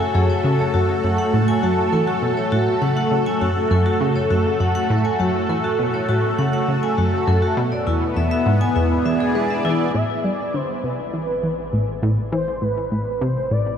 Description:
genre	ambient, sequencer-driven space music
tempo	101 BPM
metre	4/4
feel	straight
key	F# minor, A minor from 9.9 s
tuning	A4 = 440 Hz
part	lush unison pad	sustained chords	0.0-13.8 s	A3 to B5	-22 LUFS	right 1 dB	chorus, phaser
part	vibraphone with medium hard mallets	arpeggios	0.0-9.7 s	E4 to G#5	-26 LUFS	left 2 dB	auto-pan, ping-pong delay
part	analog pluck	riff	0.1-13.7 s	E2 to G#3	-21 LUFS	equal	chorus, cassette tape, ping-pong delay
part	expressive synth lead	melody	9.7-13.8 s	B4 to E5	-25 LUFS	equal	ensemble chorus, ping-pong delay
part	analog drone	bass	11.0-13.8 s	A1	-40 LUFS	equal	chorus
room	wet huge ambient reverb, RT60 8.9 s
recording	none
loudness	-17 LUFS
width	side -8 dB against mid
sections	0.0-9.9 A section; 9.9-13.8 B section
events	none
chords	0.0 F#m; 7.6 E7; 9.9 Amadd9

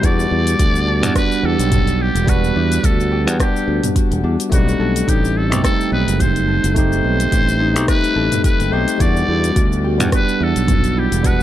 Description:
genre	sunset chillout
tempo	107 BPM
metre	4/4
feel	swing 56% on 16ths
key	E minor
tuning	A4 = 440 Hz
part	trumpet with metal mute	melody	0.0-11.4 s	F#4 to D5	-22 LUFS	equal	ping-pong delay
part	bell-like tine electric piano	accompaniment	0.0-11.4 s	G3 to F#5	-21 LUFS	moving between left 6 dB and right 8 dB	auto-pan, ping-pong delay
part	concert harp	arpeggios	0.0-11.4 s	D4 to D#5	-25 LUFS	left 1 dB	ping-pong delay
part	modern bright fingered electric bass	bass	0.0-11.4 s	E1 to E2	-18 LUFS	equal	none
part	deep house drum kit	drums	0.0-11.4 s	cabasa, hi-hat, rim click, toms	-24 LUFS	equal	none
part	electronic kick drum	drums	0.0-11.4 s	none	-17 LUFS	equal	none
room	light reverb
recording	dark, warm production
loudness	-14 LUFS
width	side -12 dB against mid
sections	0.0-11.4 A section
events	none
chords	0.0 Em9; 4.5 B7b9b13; 9.0 Em9

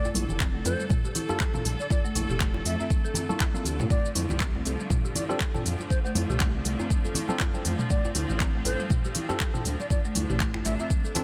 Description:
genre	afro house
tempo	120 BPM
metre	4/4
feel	swing 57% on 16ths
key	unclear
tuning	A4 = 436 Hz
part	breathy bright bass bansuri	melody	0.0-10.9 s	C5 to E5	-39 LUFS	equal	vintage 12-bit sampler grit, digital delay
part	bright studio string section	sustained chords	0.0-11.2 s	D3 to A4	-40 LUFS	equal	sidechain pumping
part	folk marimba with medium mallets	arpeggios	0.0-11.2 s	G3 to A4	-37 LUFS	equal	sidechain pumping, digital delay
part	afro-pop drum kit	drums	0.0-11.2 s	finger snaps, handclaps, hi-hat, shaker, toms	-34 LUFS	equal	none
part	congas	percussion	0.1-11.2 s	none	-38 LUFS	equal	none
part	djembe	percussion	0.1-11.2 s	none	-41 LUFS	equal	none
part	dark detuned saw bass	bass	0.2-10.8 s	F1 to Bb2	-32 LUFS	equal	sidechain pumping
part	electronic kick drum	drums	0.4-11.0 s	none	-29 LUFS	equal	none
part	tine electric piano	stabs	1.3-11.2 s	Bb3 to A4	-37 LUFS	equal	overdrive, sidechain pumping, digital delay
room	small room ambience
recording	none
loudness	-27 LUFS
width	mono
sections	0.0-11.2 A section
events	none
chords	0.0 Bbmaj7; 3.9 F6; 7.9 Dm7

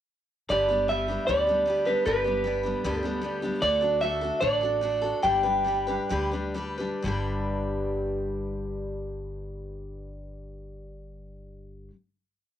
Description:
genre	country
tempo	123-154 BPM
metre	4/4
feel	straight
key	G major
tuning	A4 = 440 Hz
part	electric guitar through a small old amp	melody	0.5-6.5 s	B4 to G5	-24 LUFS	right 1 dB	cassette tape
part	picked steel-string acoustic guitar	accompaniment	0.5-12.0 s	G2 to B4	-31 LUFS	left 1 dB	none
part	upright bass	bass	0.5-11.9 s	G1 to D2	-36 LUFS	equal	none
room	light reverb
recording	home recording on cassette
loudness	-24 LUFS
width	side -10 dB against mid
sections	0.5-7.0 interlude; 7.0-10.9 final chord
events	slowing down 3.6-7.0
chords	0.5 G; 3.6 D; 5.2 G

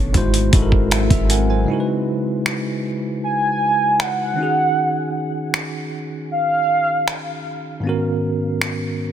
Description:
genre	contemporary R&B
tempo	78 BPM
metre	4/4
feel	straight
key	C# dorian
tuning	A4 = 439 Hz
part	bell-like tine electric piano	accompaniment	0.0-9.1 s	G#2 to G#5	-22 LUFS	right 1 dB	medium stereo tremolo
part	glassy FM pad	sustained chords	0.0-1.7 s	D3 to B#3	-29 LUFS	left 3 dB	ensemble chorus, built-in reverb
part	warm 808-style bass	bass	0.0-1.7 s	G#1	-19 LUFS	equal	none
part	dusty soul sampler-style drum kit	drums	0.1-8.8 s	finger snaps, hi-hat, kick drum	-20 LUFS	equal	overdrive, soft clipping on snare
part	warm velvety synth lead	melody	3.2-7.4 s	E#5 to G#5	-19 LUFS	right 1 dB	chorus, ping-pong delay
room	light reverb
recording	dense, heavily limited modern master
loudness	-17 LUFS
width	side -10 dB against mid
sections	0.0-1.7 A section; 1.7-9.1 B section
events	tine electric piano fill 0.5-1.7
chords	0.1 G#7b13; 1.7 C#m11; 4.4 D#m11; 7.8 G#m11

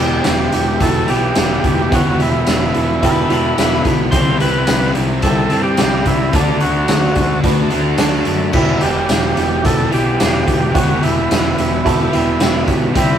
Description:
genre	classic rock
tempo	109 BPM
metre	4/4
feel	straight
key	E minor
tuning	A4 = 440 Hz
part	overdriven tonewheel organ	melody	0.0-13.2 s	D4 to C5	-20 LUFS	equal	none
part	reed electric piano	accompaniment	0.0-13.2 s	C4 to B4	-22 LUFS	right 6 dB	fast tremolo
part	bright tonewheel organ	sustained chords	0.0-13.2 s	G3 to F#5	-33 LUFS	left 1 dB	none
part	crunchy overdriven guitar	riff	0.0-13.2 s	E2 to G4	-26 LUFS	left 5 dB	phaser
part	crunchy overdriven guitar	riff	0.0-13.2 s	E2 to D4	-22 LUFS	equal	none
part	distorted electric guitar	riff	0.0-13.2 s	E2 to G4	-27 LUFS	right 4 dB	distortion
part	fuzz picked electric bass	bass	0.0-13.2 s	E1 to G2	-21 LUFS	left 1 dB	overdrive
part	raw garage drum kit	drums	0.2-13.1 s	crash cymbal, hi-hat, kick drum, snare drum, tambourine	-17 LUFS	left 1 dB	none
part	clean lap steel guitar	second line	3.0-4.0 s	D4 to B4	-23 LUFS	left 6 dB	slapback echo
room	light reverb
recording	rough rehearsal-room recording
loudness	-13 LUFS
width	side -9 dB against mid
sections	0.0-13.2 A section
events	none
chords	0.0 Emadd9; 4.1 C; 6.3 D; 8.5 Emadd9

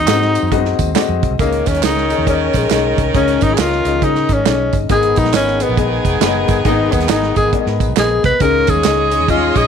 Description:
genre	uptempo 1960s-style soul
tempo	137 BPM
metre	4/4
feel	swing 62% on 8ths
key	unclear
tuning	A4 = 442 Hz
part	breathy tenor saxophone	melody	0.0-9.7 s	Ab3 to Cb5	-17 LUFS	equal	none
part	warm upright piano	accompaniment	0.0-9.6 s	Ab2 to Eb5	-19 LUFS	left 13 dB	none
part	vintage muted fingered electric bass	bass	0.0-9.7 s	F1 to Db3	-20 LUFS	right 1 dB	none
part	natural country drum kit	drums	0.1-9.6 s	hi-hat, kick drum, snare drum	-19 LUFS	right 5 dB	none
part	congas	percussion	0.1-9.7 s	none	-32 LUFS	right 14 dB	none
part	handclaps and tambourine	percussion	0.1-9.6 s	none	-28 LUFS	right 16 dB	none
part	clear saxophone section	second line	1.4-9.7 s	Eb3 to Db5	-22 LUFS	right 1 dB	none
part	clear studio string section	second line	9.3-9.7 s	Ab4 to Eb5	-22 LUFS	right 1 dB	none
room	light reverb, studio reverb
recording	1960s-style stereo with parts hard left and right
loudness	-12 LUFS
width	side -7 dB against mid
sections	0.0-1.4 A section; 1.4-9.7 B section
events	tenor saxophone solo 1.4-9.7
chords	0.0 Ab7; 1.4 Dbsus2; 4.9 Abmadd9; 8.4 Dbsus2

